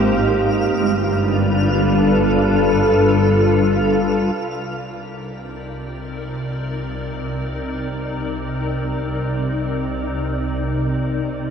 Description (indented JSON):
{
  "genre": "ambient",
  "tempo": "free time",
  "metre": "none",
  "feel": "none",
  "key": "C minor from 4.4 s",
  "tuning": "A4 = 439 Hz",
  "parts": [
    { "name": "glassy FM pad", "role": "sustained chords", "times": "0.0-11.5 s", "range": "C3 to D5", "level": "-18 LUFS", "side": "equal", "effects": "ensemble chorus, built-in reverb, shimmer reverb" },
    { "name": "muted felt-like synth keys", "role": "arpeggios", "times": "0.0-0.9 s", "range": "C4 to C5", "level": "-28 LUFS", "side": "equal", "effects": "none" },
    { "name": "rich studio double bass section", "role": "bass", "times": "0.0-11.5 s", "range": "G1 to C2", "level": "-24 LUFS", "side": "right 1 dB", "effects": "none" },
    { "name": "twinkling granular texture", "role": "texture", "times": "0.0-4.4 s", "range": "F4 to F5", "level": "-27 LUFS", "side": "equal", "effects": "built-in reverb, ensemble chorus, shimmer reverb" }
  ],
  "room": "wet lush hall reverb, RT60 2.6 s",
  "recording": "dreamy mix soaked in reverb",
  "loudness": "-17 LUFS",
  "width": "side -7 dB against mid",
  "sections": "0.0-4.4 A section; 4.4-11.5 B section",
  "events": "fade-in on ambient pad 4.4-11.5; fade-in on double bass section 4.4-11.5",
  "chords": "0.0 Abmaj7; 0.7 G7; 4.4 Cm7"
}